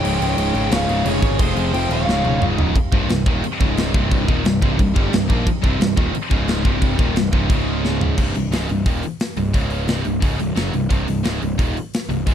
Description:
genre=heavy metal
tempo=177 BPM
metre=4/4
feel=straight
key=C phrygian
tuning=A4 = 440 Hz
part: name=high-gain lead guitar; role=melody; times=0.0-2.4 s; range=C5 to G5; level=-24 LUFS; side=left 1 dB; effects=distortion, ping-pong delay
part: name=high-gain lead guitar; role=second line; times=0.0-2.4 s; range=Ab4 to Db5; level=-30 LUFS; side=right 6 dB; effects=distortion
part: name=warm analog pad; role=sustained chords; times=0.0-8.2 s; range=C3 to G5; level=-32 LUFS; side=equal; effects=none
part: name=high-gain distorted guitar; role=riff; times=0.0-12.3 s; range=C2 to Bb3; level=-25 LUFS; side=left 13 dB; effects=distortion
part: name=high-gain distorted guitar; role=riff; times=0.0-8.2 s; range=C2 to Bb3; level=-26 LUFS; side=equal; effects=distortion
part: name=tight distorted guitar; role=riff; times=0.0-12.3 s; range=C2 to Bb3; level=-25 LUFS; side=right 14 dB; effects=distortion
part: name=fuzz picked electric bass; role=bass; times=0.0-12.3 s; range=C1 to Bb1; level=-23 LUFS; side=equal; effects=overdrive
part: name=tight metal drum kit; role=drums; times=0.0-12.3 s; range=crash cymbal, hi-hat, kick drum, snare drum, toms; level=-20 LUFS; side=equal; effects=none
room=little or no reverb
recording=dark, warm production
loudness=-16 LUFS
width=side -9 dB against mid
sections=0.0-2.8 A section; 2.8-8.2 B section; 8.2-12.3 C section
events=half time 0.0-2.8; drum fill 2.1-2.8, 7.8-8.2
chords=0.0 Db; 1.4 Fm; 2.1 Db; 2.8 Cm; 3.6 Db5; 3.9 Cm; 6.3 Db5; 6.7 Cm; 7.5 Db5; 8.2 Cm; 9.5 Db5; 9.9 Cm

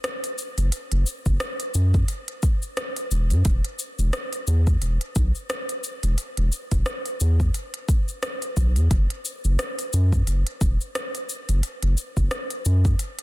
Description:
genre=organic downtempo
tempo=88 BPM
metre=4/4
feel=swing 57% on 16ths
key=unclear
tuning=A4 = 440 Hz
part: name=organic electronic drum kit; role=drums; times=0.0-13.2 s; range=cabasa, hi-hat, rim click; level=-30 LUFS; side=equal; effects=none
part: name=round analog bass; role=bass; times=0.6-13.0 s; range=E1 to F#2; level=-20 LUFS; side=equal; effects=tube saturation, sidechain pumping
part: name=electronic kick drum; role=drums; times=1.3-13.0 s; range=none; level=-22 LUFS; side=equal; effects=none
room=little or no reverb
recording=dense, heavily limited modern master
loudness=-21 LUFS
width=side -17 dB against mid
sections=0.0-13.2 A section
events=none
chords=none

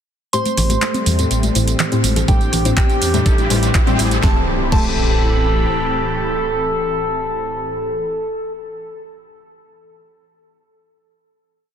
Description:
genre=progressive house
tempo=123 BPM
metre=4/4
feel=straight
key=A minor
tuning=A4 = 440 Hz
part: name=expressive portamento lead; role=melody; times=0.3-8.5 s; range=G4 to C5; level=-22 LUFS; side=equal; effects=wide subtle chorus, ping-pong delay
part: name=soft synth bell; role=second line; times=0.3-8.5 s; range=G5 to C6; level=-28 LUFS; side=right 2 dB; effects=chorus, sidechain pumping, ping-pong delay
part: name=filtered supersaw swell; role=sustained chords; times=0.3-8.0 s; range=A2 to B5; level=-25 LUFS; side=right 1 dB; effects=sidechain pumping, low-pass filter
part: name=deep mellow chord stab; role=stabs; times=0.3-8.5 s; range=A2 to C5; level=-22 LUFS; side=left 2 dB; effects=ensemble chorus, cassette tape, sidechain pumping
part: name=deep house drum kit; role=drums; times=0.3-4.9 s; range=crash cymbal, handclaps, hi-hat, snare drum, tambourine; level=-23 LUFS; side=right 1 dB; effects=none
part: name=riser and impact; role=sound effects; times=2.1-8.1 s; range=none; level=-27 LUFS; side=equal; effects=none
part: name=wide unison pluck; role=arpeggios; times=0.5-4.9 s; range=E3 to A4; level=-27 LUFS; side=equal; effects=sidechain pumping, ping-pong delay
part: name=dark detuned saw bass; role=bass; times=0.6-5.7 s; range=A1 to E2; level=-19 LUFS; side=equal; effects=tube saturation, sidechain pumping
part: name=congas and woodblock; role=percussion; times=0.6-4.1 s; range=none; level=-26 LUFS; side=left 2 dB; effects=sidechain pumping on perc
part: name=electronic kick drum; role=drums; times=2.3-4.9 s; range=none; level=-15 LUFS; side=equal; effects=overdrive
room=light reverb, digital ambience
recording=dense, heavily limited modern master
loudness=-15 LUFS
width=side -8 dB against mid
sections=0.3-4.2 build; 4.2-8.1 final chord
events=build-up 0.3-4.2; filter sweep on synth pluck 0.3-4.2; filter sweep on synth stab 0.3-4.2; filter sweep on supersaw synth 0.3-4.2; riser 2.1-4.2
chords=0.3 Am7; 2.3 Cadd9/A; 4.2 Am7

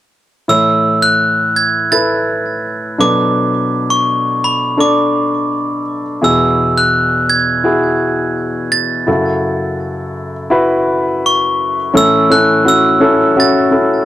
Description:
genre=pop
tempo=84 BPM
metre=4/4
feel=straight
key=A major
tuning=A4 = 440 Hz
part: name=glockenspiel with brass mallets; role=melody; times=0.5-14.1 s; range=B5 to A6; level=-14 LUFS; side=right 2 dB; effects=none
part: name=warm baby grand piano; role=accompaniment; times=0.5-14.1 s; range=E2 to D5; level=-14 LUFS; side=left 1 dB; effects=none
room=little or no reverb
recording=dry, gritty hardware recording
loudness=-11 LUFS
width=side -13 dB against mid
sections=0.5-11.9 A section; 11.9-14.1 B section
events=none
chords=0.5 A; 3.0 Bm7; 6.2 Eadd9; 9.1 F#m7; 11.9 A

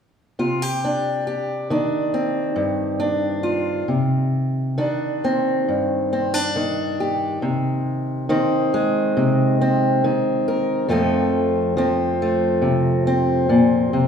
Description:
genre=folk, solo fingerstyle acoustic guitar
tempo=69 BPM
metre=4/4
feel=straight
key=C minor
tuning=A4 = 443 Hz
part: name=fingerpicked acoustic archtop guitar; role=solo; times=0.4-14.1 s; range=F2 to Bb4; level=-18 LUFS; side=equal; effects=none
room=moderate scoring stage reverb, RT60 1.7 s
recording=recorded in a church or concert hall, small room ambience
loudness=-18 LUFS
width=side -7 dB against mid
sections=0.4-3.9 A section; 3.9-14.1 B section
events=none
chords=0.4 Cmadd9; 7.4 Ab/C; 10.9 F

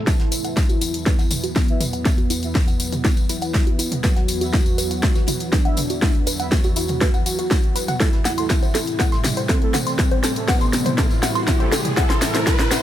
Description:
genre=melodic techno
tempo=121 BPM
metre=4/4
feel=straight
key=E minor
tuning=A4 = 440 Hz
part: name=lush unison pad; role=sustained chords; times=0.0-12.8 s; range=E2 to B3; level=-29 LUFS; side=equal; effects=chorus, sidechain pumping
part: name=tight sequenced synth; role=arpeggios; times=0.0-12.8 s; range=E4 to C6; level=-28 LUFS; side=equal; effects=chorus, sidechain pumping, dub echo
part: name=analog synth brass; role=stabs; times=0.0-12.5 s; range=A3 to E5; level=-35 LUFS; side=right 3 dB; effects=none
part: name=fat analog lead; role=melody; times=0.1-12.8 s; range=B3 to F#4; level=-27 LUFS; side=equal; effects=phaser, sidechain pumping, dub echo
part: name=damped 70s drum kit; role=drums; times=0.1-12.8 s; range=hi-hat, snare drum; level=-38 LUFS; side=right 4 dB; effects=none
part: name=deep house drum kit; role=drums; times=0.1-12.8 s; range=hi-hat, snare drum, toms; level=-25 LUFS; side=equal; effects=small room ambience
part: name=electronic kick drum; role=drums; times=0.1-12.6 s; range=none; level=-19 LUFS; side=equal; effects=overdrive, small room ambience
part: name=tambourine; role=percussion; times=0.1-12.8 s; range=none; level=-30 LUFS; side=left 4 dB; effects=none
part: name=riser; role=sound effects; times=10.1-12.8 s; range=none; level=-29 LUFS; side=equal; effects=none
room=little or no reverb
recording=none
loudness=-17 LUFS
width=side -12 dB against mid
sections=0.1-12.8 A section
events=build-up 0.1-12.8; drum fill 0.1-12.8; filter sweep on synth arpeggio sound 0.1-12.8; filter sweep on analog synth lead 0.1-12.8; riser 10.1-12.8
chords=0.1 Esus2; 8.0 Am7

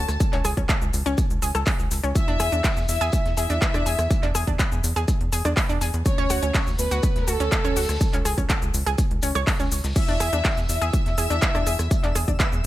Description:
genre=progressive house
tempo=123 BPM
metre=4/4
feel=straight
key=E mixolydian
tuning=A4 = 441 Hz
part: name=soft octave-layered synth lead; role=melody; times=0.0-12.1 s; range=A4 to A5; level=-31 LUFS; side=equal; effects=chorus, sidechain pumping, dub echo
part: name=warm symphonic violin section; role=second line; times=0.0-12.1 s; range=A4 to A5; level=-32 LUFS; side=left 2 dB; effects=sidechain pumping, dub echo
part: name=analog pluck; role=arpeggios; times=0.0-12.4 s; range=C#4 to C#5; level=-29 LUFS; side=equal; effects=chorus, sidechain pumping, dub echo
part: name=tight sequencer bass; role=bass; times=0.0-12.7 s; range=C#2 to E2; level=-26 LUFS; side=equal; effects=sidechain pumping
part: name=big-room dance drum kit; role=drums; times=0.1-12.7 s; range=crash cymbal, handclaps, hi-hat, rim click, shaker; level=-28 LUFS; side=equal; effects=overdrive, studio reverb
part: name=warm soul drum kit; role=drums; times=0.1-12.7 s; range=hi-hat, shaker, snare drum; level=-39 LUFS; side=equal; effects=sidechain pumping on hats, high-pass filter on hats, studio reverb, high-pass filter on snare, sidechain pumping on perc, high-pass filter on perc, high-pass filter on room
part: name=electronic kick drum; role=drums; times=0.2-12.5 s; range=none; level=-23 LUFS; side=equal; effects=overdrive, studio reverb
part: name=twinkling granular texture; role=texture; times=10.4-12.7 s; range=E5 to E6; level=-39 LUFS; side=right 1 dB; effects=none
room=studio reverb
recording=none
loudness=-20 LUFS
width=side -15 dB against mid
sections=0.0-12.7 A section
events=none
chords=0.2 Amaj7/C#; 2.2 E7; 6.1 Dmaj7; 8.0 A/C#; 10.0 E7

